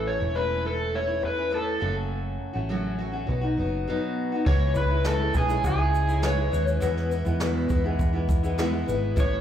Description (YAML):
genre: acoustic pop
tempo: 102 BPM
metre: 4/4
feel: straight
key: C# minor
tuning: A4 = 440 Hz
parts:
  - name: overdriven slide guitar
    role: melody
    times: 0.0-9.4 s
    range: G#4 to C#5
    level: -27 LUFS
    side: equal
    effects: slapback echo, digital delay
  - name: picked steel-string acoustic guitar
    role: accompaniment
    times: 0.0-9.4 s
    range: E2 to F#4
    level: -28 LUFS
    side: left 2 dB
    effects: slapback echo
  - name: hollow-body short-scale fingered electric bass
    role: bass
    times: 0.0-9.4 s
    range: E1 to E2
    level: -27 LUFS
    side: equal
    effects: none
  - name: jazz brush drum kit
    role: drums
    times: 4.5-9.3 s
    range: crash cymbal, kick drum, shaker, snare drum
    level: -28 LUFS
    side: equal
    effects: none
room: light reverb, small room ambience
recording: live gig heard through the venue's PA, club ambience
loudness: -23 LUFS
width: side -10 dB against mid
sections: 0.0-4.5 A section; 4.5-9.4 B section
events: none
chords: 0.0 A; 1.8 F#m; 3.3 B; 4.5 C#m; 6.8 E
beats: 0.35 0.94 1.53 | 2.12 2.71 3.29 3.88 | 4.47 5.06 5.65 6.23 | 6.82 7.41 8.00 8.58 | 9.17